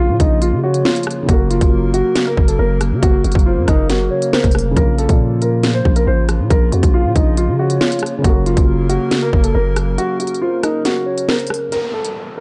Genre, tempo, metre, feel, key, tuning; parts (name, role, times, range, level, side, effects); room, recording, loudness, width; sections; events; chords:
hip hop, drill; 138 BPM; 4/4; half-time; A4 = 440 Hz
dark concert grand piano; melody; 0.0-12.4 s; Eb4 to C5; -22 LUFS; equal; low-pass filter
hollow clarinet-like synth lead; second line; 0.0-11.7 s; Bb4 to F5; -27 LUFS; equal; chorus, digital delay
felt-muted upright piano; accompaniment; 0.0-11.7 s; Db3 to Bb4; -26 LUFS; equal; low-pass filter
hollow soft pad; sustained chords; 0.0-11.7 s; Db3 to Bb4; -28 LUFS; equal; chorus
growling 808-style bass; bass; 0.0-10.0 s; F1 to Db3; -20 LUFS; equal
drill drum kit; drums; 0.2-12.1 s; hi-hat, kick drum, rim click, snare drum; -18 LUFS; equal
downlifter; sound effects; 11.7-12.4 s; -30 LUFS; equal
light reverb; dark, warm production, nothing above 10.4 kHz; -16 LUFS; mono
0.0-11.7 A section
break 10.0-11.7, 11.7-12.4
0.0 Bbm; 1.3 Gb; 4.8 Bbm; 8.2 Gb; 11.7 N.C.